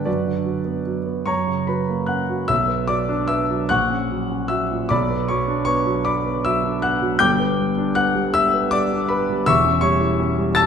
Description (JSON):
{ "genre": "classical, romantic character piece for solo piano", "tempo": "49-55 BPM (dotted quarters)", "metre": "6/8", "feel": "rubato", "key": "B minor", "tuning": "A4 = 440 Hz", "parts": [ { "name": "warm concert grand piano", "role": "solo", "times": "0.0-10.7 s", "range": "E1 to A6", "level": "-18 LUFS", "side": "equal", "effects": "none" } ], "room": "wet recital hall reverb, RT60 1.4 s", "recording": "none", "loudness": "-18 LUFS", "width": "side -7 dB against mid", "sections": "0.0-2.5 A section; 2.5-10.7 B section", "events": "none", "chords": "0.1 Bm/F#; 1.3 F#; 2.5 Bm; 3.7 F#/A#; 4.9 Bm; 7.2 G; 9.5 C#dim/E" }